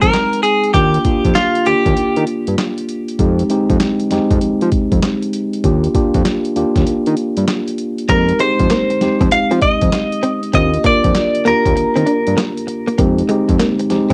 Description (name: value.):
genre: R&B, new jack swing.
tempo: 98 BPM.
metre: 4/4.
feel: swing 65% on 16ths.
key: F dorian.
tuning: A4 = 440 Hz.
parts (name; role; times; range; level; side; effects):
direct-recorded clean electric guitar; melody; 0.0-2.2, 8.1-12.3 s; F4 to F5; -18 LUFS; equal; lush chorus, cassette tape.
tine electric piano; accompaniment; 0.0-14.1 s; Ab3 to G5; -20 LUFS; equal; cassette tape.
fat analog bass; bass; 0.0-14.1 s; Eb2 to F3; -20 LUFS; equal; none.
boom bap sampler-style drum kit; drums; 0.0-14.1 s; handclaps, hi-hat, kick drum, snare drum; -21 LUFS; equal; cassette tape.
direct-recorded clean electric guitar; riff; 8.1-14.1 s; Ab3 to Eb4; -22 LUFS; equal; ensemble chorus, cassette tape.
room: light reverb.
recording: home recording on cassette.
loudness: -15 LUFS.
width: mono.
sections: 0.0-14.1 A section.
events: none.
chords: 0.0 Fm7; 0.7 Ebmaj7; 3.2 Fm7; 5.6 Ebmaj7; 8.1 Fm7; 10.5 Ebmaj7; 13.0 Fm7.